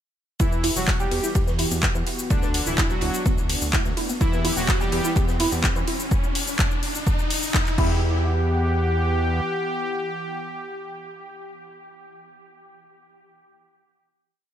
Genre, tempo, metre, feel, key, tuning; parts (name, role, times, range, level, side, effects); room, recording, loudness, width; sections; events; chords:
melodic techno; 126 BPM; 4/4; straight; E minor; A4 = 440 Hz
soft supersaw; melody; 0.4-11.5 s; D3 to G4; -30 LUFS; equal; sidechain pumping, dub echo
warm analog pad; sustained chords; 0.4-11.5 s; E3 to F#5; -33 LUFS; right 2 dB; chorus, sidechain pumping
woody wave-folded pluck; arpeggios; 0.4-8.2 s; B3 to G5; -31 LUFS; right 2 dB; lush chorus, sidechain pumping, dub echo
fat analog bass; bass; 0.4-9.4 s; D1 to E2; -25 LUFS; equal; sidechain pumping
electronic kick drum; drums; 0.4-7.9 s; -23 LUFS; equal; small room ambience
house drum kit; drums; 0.4-7.9 s; crash cymbal, handclaps, hi-hat, shaker; -27 LUFS; left 2 dB; small room ambience
warm soul drum kit; drums; 0.4-6.0 s; ride cymbal, snare drum; -38 LUFS; right 5 dB; high-pass filter on cymbals, small room ambience, high-pass filter on snare, high-pass filter on room
riser; sound effects; 2.2-8.0 s; -33 LUFS; equal
little or no reverb; -20 LUFS; side -10 dB against mid
0.4-8.0 build; 8.0-11.8 final hit
build-up 0.4-8.0; filter sweep on synth pluck 0.4-6.1; riser 2.2-8.0
0.4 Em; 2.3 Bm/D; 4.2 Em; 6.1 N.C.; 7.8 Em